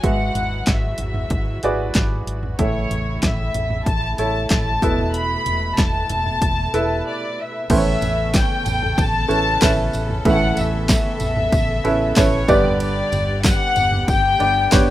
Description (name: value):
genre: piano-driven pop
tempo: 94 BPM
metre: 4/4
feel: straight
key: A mixolydian from 7.7 s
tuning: A4 = 440 Hz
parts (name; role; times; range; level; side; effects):
- warm studio violin section; melody; 0.0-14.9 s; C#5 to B5; -22 LUFS; left 2 dB; none
- clear baby grand piano; accompaniment; 0.0-14.9 s; G2 to E5; -22 LUFS; right 2 dB; none
- warm studio string section; sustained chords; 0.0-14.9 s; B2 to A4; -31 LUFS; left 1 dB; none
- vintage muted fingered electric bass; bass; 0.0-14.9 s; E1 to A1; -25 LUFS; equal; none
- punchy analog drum machine; drums; 0.0-14.9 s; crash cymbal, handclaps, hi-hat, kick drum, ride cymbal, snare drum, toms; -20 LUFS; equal; none
- tambourine; percussion; 8.0-14.9 s; none; -34 LUFS; right 4 dB; none
room: little or no reverb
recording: rough home demo mix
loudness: -17 LUFS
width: side -14 dB against mid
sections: 0.0-7.7 A section; 7.7-14.9 B section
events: break 7.1-7.7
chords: 0.0 Eadd9/G#; 2.6 A; 4.8 Esus4; 7.7 Aadd9; 12.5 G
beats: | 0.04 0.67 1.31 1.95 | 2.59 3.23 3.87 4.51 | 5.15 5.79 6.42 7.06 | 7.70 8.34 8.98 9.62 | 10.25 10.89 11.53 12.17 | 12.80 13.44 14.08 14.72